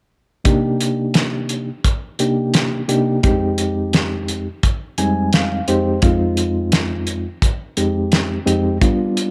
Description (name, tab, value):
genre	straight-eighth soul blues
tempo	86 BPM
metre	4/4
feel	straight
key	C minor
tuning	A4 = 439 Hz
part	reed electric piano	accompaniment	0.4-9.3 s	F2 to Ab5	-20 LUFS	equal	fast tremolo
part	cloth-damped thuddy drum kit	drums	0.5-9.3 s	hi-hat, kick drum, snare drum	-20 LUFS	equal	none
room	light reverb, small room ambience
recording	none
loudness	-18 LUFS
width	mono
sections	0.4-9.3 A section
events	reed electric piano fill 4.6-6.0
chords	0.4 Cm7; 3.2 Fm7; 8.8 G7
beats	| 0.44 1.14 1.84 2.53 | 3.23 3.93 4.63 5.32 | 6.02 6.72 7.41 8.11 | 8.80